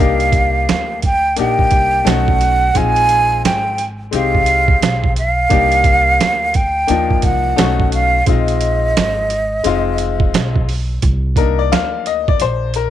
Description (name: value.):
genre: hip hop, jazz-hop.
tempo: 87 BPM.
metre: 4/4.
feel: swing 62% on 16ths.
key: C minor.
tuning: A4 = 441 Hz.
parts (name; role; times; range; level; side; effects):
breathy concert flute; melody; 0.0-10.7 s; Eb5 to Ab5; -16 LUFS; right 2 dB; none.
bright upright piano; accompaniment; 0.0-12.9 s; F3 to F5; -20 LUFS; left 12 dB; none.
upright bass; bass; 0.0-12.9 s; F1 to Eb2; -19 LUFS; equal; none.
boom bap sampler-style drum kit; drums; 0.2-12.9 s; hi-hat, kick drum, snare drum; -17 LUFS; right 2 dB; none.
room: light reverb, small room ambience.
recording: 1960s-style stereo.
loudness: -12 LUFS.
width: side -11 dB against mid.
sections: 0.0-11.0 A section; 11.0-12.9 B section.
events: upright piano solo 11.0-12.9.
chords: 0.0 Cm9; 2.1 B9; 2.8 Bb7sus4; 5.5 Cm9; 7.6 B9; 8.3 Bb7sus4; 11.0 Cm9.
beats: 0.68 1.37 2.06 | 2.75 3.44 4.13 4.82 | 5.51 6.20 6.89 7.58 | 8.27 8.96 9.65 10.34 | 11.03 11.72 12.41.